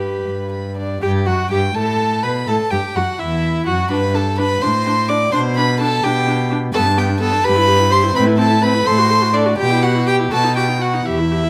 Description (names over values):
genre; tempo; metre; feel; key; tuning
quick classical-period movement for string quartet; 84 BPM (dotted quarters); 6/8; rubato; E minor; A4 = 439 Hz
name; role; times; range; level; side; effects
warm violin; melody; 0.0-11.5 s; D5 to D6; -22 LUFS; equal; none
warm violin; second line; 0.0-11.5 s; D4 to D5; -24 LUFS; equal; none
warm viola; accompaniment; 0.0-11.5 s; B3 to B4; -24 LUFS; equal; none
warm cello; bass; 0.0-11.5 s; E2 to B2; -21 LUFS; equal; none
room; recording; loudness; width
moderate recital hall reverb, RT60 1.5 s; close, detailed microphones; -17 LUFS; mono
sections
0.0-1.0 A section; 1.0-11.5 B section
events
none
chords
0.0 G; 1.0 N.C.; 1.7 Asus2; 2.5 Em; 3.9 G5; 4.6 D5/A; 5.3 G/B; 6.7 G; 7.4 Em/G; 8.2 Am; 8.9 F#dim/A; 9.6 Em/B; 10.3 B